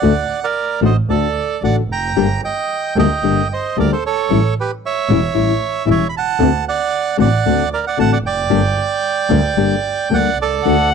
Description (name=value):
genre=tango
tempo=113 BPM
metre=4/4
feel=rubato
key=G harmonic minor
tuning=A4 = 440 Hz
part: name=bandoneon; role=melody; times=0.0-10.9 s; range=G4 to B5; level=-18 LUFS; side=right 7 dB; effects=none
part: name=nylon-string guitar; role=accompaniment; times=0.0-10.8 s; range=D3 to G4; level=-17 LUFS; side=left 12 dB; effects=none
part: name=clear double bass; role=bass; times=0.0-10.9 s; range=E1 to D2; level=-19 LUFS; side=right 3 dB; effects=none
part: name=warm violin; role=second line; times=10.7-10.9 s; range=F#5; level=-16 LUFS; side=left 4 dB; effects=none
room=little or no reverb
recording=dry, close 1970s-style studio recording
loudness=-14 LUFS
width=side -6 dB against mid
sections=0.0-10.9 A section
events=none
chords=0.0 D; 2.2 Gm; 4.3 A7; 6.4 D7; 8.5 Gm